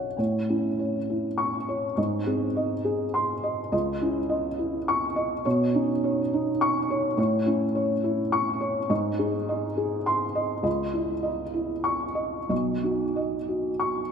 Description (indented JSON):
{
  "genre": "neoclassical minimalist piano",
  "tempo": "90-106 BPM",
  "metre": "3/4",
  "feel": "rubato",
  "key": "C# minor",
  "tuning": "A4 = 440 Hz",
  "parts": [
    { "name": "felt-muted upright piano", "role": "solo", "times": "0.0-14.1 s", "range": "B1 to C#6", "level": "-24 LUFS", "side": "equal", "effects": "ping-pong delay" }
  ],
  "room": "wet plate reverb, RT60 3.0 s",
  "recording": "dreamy mix soaked in reverb",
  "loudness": "-24 LUFS",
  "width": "side -7 dB against mid",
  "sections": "0.2-14.1 A section",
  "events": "none",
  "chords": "0.2 A; 2.0 G#; 3.7 C#madd9; 5.5 Badd9; 7.2 A; 8.9 G#; 10.7 C#madd9; 12.5 Badd9",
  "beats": "| 0.18 0.79 1.39 | 1.97 2.56 3.14 | 3.73 4.31 4.88 | 5.45 6.03 6.61 | 7.18 7.75 8.33 | 8.90 9.48 10.08 | 10.65 11.24 11.86 | 12.51 13.17 13.81"
}